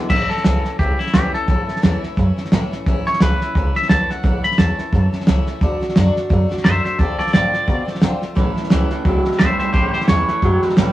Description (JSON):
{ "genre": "rockabilly", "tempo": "174 BPM", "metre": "4/4", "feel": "swing 58% on 8ths", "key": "A major", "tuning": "A4 = 441 Hz", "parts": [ { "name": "picked acoustic archtop guitar", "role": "accompaniment", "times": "0.0-10.9 s", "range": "A2 to F#4", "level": "-26 LUFS", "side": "left 2 dB", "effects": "none" }, { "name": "electric guitar through a small old amp", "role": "riff", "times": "0.0-0.1, 8.4-10.9 s", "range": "A2 to G3", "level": "-21 LUFS", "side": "right 2 dB", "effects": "none" }, { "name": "twangy electric guitar", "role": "melody", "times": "0.1-10.8 s", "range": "E4 to B5", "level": "-20 LUFS", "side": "left 1 dB", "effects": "none" }, { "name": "upright bass", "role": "bass", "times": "0.1-10.9 s", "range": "A1 to D3", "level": "-20 LUFS", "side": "equal", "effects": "none" }, { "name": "cloth-damped thuddy drum kit", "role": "drums", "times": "0.1-10.9 s", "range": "crash cymbal, hi-hat, kick drum, snare drum", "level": "-18 LUFS", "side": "right 1 dB", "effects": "none" } ], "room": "moderate studio reverb, RT60 0.7 s", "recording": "rough rehearsal-room recording", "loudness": "-15 LUFS", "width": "side -15 dB against mid", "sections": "0.1-10.9 A section", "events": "clean electric guitar solo 0.1-10.9", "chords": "0.1 A; 5.6 D; 7.0 Dm7; 8.4 A", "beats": "| 0.10 0.44 0.79 1.14 | 1.48 1.83 2.17 2.52 | 2.86 3.21 3.55 3.90 | 4.24 4.58 4.93 5.27 | 5.62 5.96 6.30 6.65 | 6.99 7.33 7.68 8.02 | 8.37 8.71 9.05 9.40 | 9.74 10.09 10.43 10.77" }